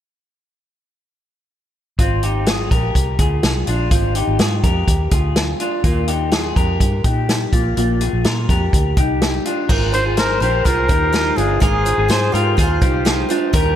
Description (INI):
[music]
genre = jangly indie pop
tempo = 125 BPM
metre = 4/4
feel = straight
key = unclear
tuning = A4 = 439 Hz
[part]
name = electric guitar through a small old amp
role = arpeggios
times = 2.0-13.8 s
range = Bb3 to C5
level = -21 LUFS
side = left 2 dB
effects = wide subtle chorus, tape echo
[part]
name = vintage muted fingered electric bass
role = bass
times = 2.0-13.8 s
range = G1 to Bb2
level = -20 LUFS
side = equal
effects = none
[part]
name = vintage drum kit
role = drums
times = 2.0-13.7 s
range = crash cymbal, hi-hat, kick drum, snare drum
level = -18 LUFS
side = equal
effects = none
[part]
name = picked steel-string acoustic guitar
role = accompaniment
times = 9.7-13.8 s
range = Eb3 to C5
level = -24 LUFS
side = right 5 dB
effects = lush chorus
[part]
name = breathy trumpet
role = melody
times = 9.9-13.3 s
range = F4 to C5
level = -20 LUFS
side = left 1 dB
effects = none
[sound]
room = moderate plate reverb, RT60 2.8 s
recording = dreamy mix soaked in reverb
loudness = -15 LUFS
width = side -10 dB against mid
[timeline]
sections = 2.0-9.7 A section; 9.7-13.8 B section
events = none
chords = 2.0 Ab6; 5.8 Ebadd9; 7.5 Bbsus4; 9.7 Ab6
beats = | 1.99 2.47 2.95 3.43 | 3.91 4.40 4.88 5.36 | 5.84 6.32 6.80 7.29 | 7.77 8.25 8.73 9.21 | 9.69 10.17 10.65 11.14 | 11.62 12.10 12.58 13.06 | 13.54